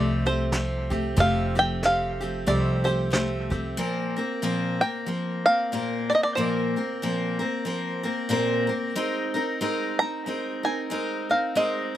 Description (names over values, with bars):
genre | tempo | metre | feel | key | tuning
acoustic folk duo or small band | 93 BPM | 4/4 | swing 59% on 8ths | unclear | A4 = 440 Hz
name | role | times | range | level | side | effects
bluegrass banjo | melody | 0.0-12.0 s | C5 to Bb5 | -24 LUFS | right 1 dB | none
picked steel-string acoustic guitar | accompaniment | 0.0-12.0 s | F2 to Bb4 | -26 LUFS | left 1 dB | slapback echo
upright bass | bass | 0.0-3.7 s | F1 to C2 | -28 LUFS | equal | none
vintage brush drum kit | drums | 0.3-3.6 s | hi-hat, kick drum, snare drum | -28 LUFS | right 1 dB | none
room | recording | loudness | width
little or no reverb | recorded outdoors, with no room sound | -23 LUFS | side -12 dB against mid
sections
0.0-3.8 A section; 3.8-12.0 B section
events
five-string banjo solo 0.0-3.8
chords
0.0 Fadd9; 3.8 Bbsus2; 9.0 Abadd9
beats
0.53 | 1.18 1.83 2.48 3.12 | 3.77 4.42 5.07 5.71 | 6.36 7.01 7.66 8.31 | 8.96 9.61 10.25 10.90 | 11.55